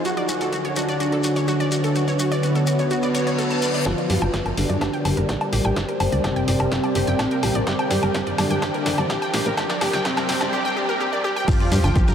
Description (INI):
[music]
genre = melodic techno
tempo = 126 BPM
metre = 4/4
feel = straight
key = G phrygian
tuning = A4 = 440 Hz
[part]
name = deep dark ambient pad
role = texture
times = 0.0-10.5 s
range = D3 to Bb5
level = -30 LUFS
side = equal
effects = chorus, built-in reverb, sidechain pumping
[part]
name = soft supersaw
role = melody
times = 0.1-12.1 s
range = C3 to G4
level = -26 LUFS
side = equal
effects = low-pass filter, diffuse ambient delay
[part]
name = dark analog pad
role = sustained chords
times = 0.1-10.5 s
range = D3 to D5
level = -26 LUFS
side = equal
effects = chorus, phaser, sidechain pumping
[part]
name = wide unison pluck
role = arpeggios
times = 0.1-12.1 s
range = F#4 to A5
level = -26 LUFS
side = equal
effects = sidechain pumping, tape echo
[part]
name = punchy analog drum machine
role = drums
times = 0.1-12.1 s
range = crash cymbal, hi-hat, snare drum, toms, woodblock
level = -28 LUFS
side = left 1 dB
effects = overdrive, sidechain pumping on hats, high-pass filter on hats, high-pass filter on snare, sidechain pumping on perc, high-pass filter on perc, sidechain pumping on toms, high-pass filter on toms, sidechain pumping on cymbals, high-pass filter on cymbals
[part]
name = shekere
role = percussion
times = 0.1-3.8, 11.5-12.1 s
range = none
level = -34 LUFS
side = left 2 dB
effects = none
[part]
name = reverse cymbal, riser and sub drop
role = sound effects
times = 3.1-12.1 s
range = none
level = -33 LUFS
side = equal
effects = none
[part]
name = tight sequencer bass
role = bass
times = 3.9-12.1 s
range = G1 to G2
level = -24 LUFS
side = equal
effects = sidechain pumping
[part]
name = electronic kick drum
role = drums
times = 3.9-12.1 s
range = none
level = -24 LUFS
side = equal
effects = overdrive, high-pass filter on kick
[sound]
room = wet huge ambient reverb, RT60 8.3 s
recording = dreamy mix soaked in reverb, high-pass filter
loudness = -19 LUFS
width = side -8 dB against mid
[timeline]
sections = 0.0-3.9 A section; 3.9-11.5 B section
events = filter sweep on supersaw synth 0.0-3.9, 3.9-11.5; reverse cymbal 3.1-3.9; build-up 3.9-11.5; drum fill 3.9-10.5; filter sweep 3.9-11.5; impact 11.5-12.1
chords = 0.1 Dmaj7; 3.9 Gm